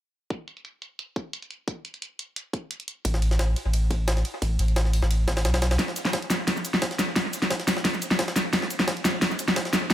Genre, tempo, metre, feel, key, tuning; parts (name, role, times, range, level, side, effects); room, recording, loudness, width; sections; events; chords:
liquid drum and bass; 175 BPM; 4/4; straight; A4 = 437 Hz
electronic kick drum; drums; 0.3-9.9 s; -34 LUFS; equal; high-pass filter on kick, high-pass filter on room
pop drum kit; drums; 0.3-9.9 s; hi-hat, shaker, snare drum; -25 LUFS; equal; low-pass filter on hats, low-pass filter on snare, low-pass filter on perc, low-pass filter on room, dub echo
warm sub bass; bass; 3.0-5.8 s; A1 to B1; -22 LUFS; equal
jungle sampler-style drum kit; drums; 3.0-9.9 s; hi-hat, ride cymbal, snare drum; -30 LUFS; equal; high-pass filter on cymbals, high-pass filter on snare, high-pass filter on hats, dub echo
light reverb, digital ambience; echo-heavy mix; -23 LUFS; side -12 dB against mid
0.3-5.8 A section; 5.8-9.9 B section
build-up 5.8-9.9; drum fill 5.8-9.9